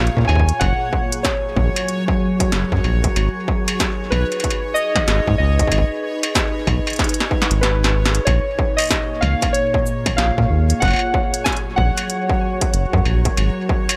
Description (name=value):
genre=IDM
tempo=94 BPM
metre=4/4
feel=swing 62% on 16ths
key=G# dorian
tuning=A4 = 440 Hz
part: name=warbly lo-fi synth keys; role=melody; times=0.0-13.0 s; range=B4 to G#5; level=-25 LUFS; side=equal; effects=chorus, vintage 12-bit sampler grit, delay
part: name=glassy FM pad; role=sustained chords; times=0.0-14.0 s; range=A#2 to C#5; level=-28 LUFS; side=equal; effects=ensemble chorus, built-in reverb
part: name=round analog bass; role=bass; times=0.0-13.5 s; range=F#1 to A#2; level=-20 LUFS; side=equal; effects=none
part: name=bubbling stepped-filter texture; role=texture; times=0.0-14.0 s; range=C#5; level=-34 LUFS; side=equal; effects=chorus, built-in reverb
part: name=industrial drum kit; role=drums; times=0.1-14.0 s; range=hi-hat, shaker, snare drum, struck metal, toms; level=-24 LUFS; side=equal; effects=small room ambience
part: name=electronic kick drum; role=drums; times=0.2-13.9 s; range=none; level=-24 LUFS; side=equal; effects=distortion, small room ambience
room=little or no reverb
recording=none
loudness=-18 LUFS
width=mono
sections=0.0-14.0 A section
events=drum fill 7.0-8.3; kick drops out 7.6-8.3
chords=0.0 A#m7; 0.6 F#add9; 3.2 G#m; 8.3 A#m7; 10.8 F#add9; 13.4 G#5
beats=| 0.61 1.25 1.89 2.52 | 3.16 3.80 4.44 5.08 | 5.71 6.35 6.99 7.63 | 8.27 8.91 9.54 10.18 | 10.82 11.46 12.10 12.74 | 13.37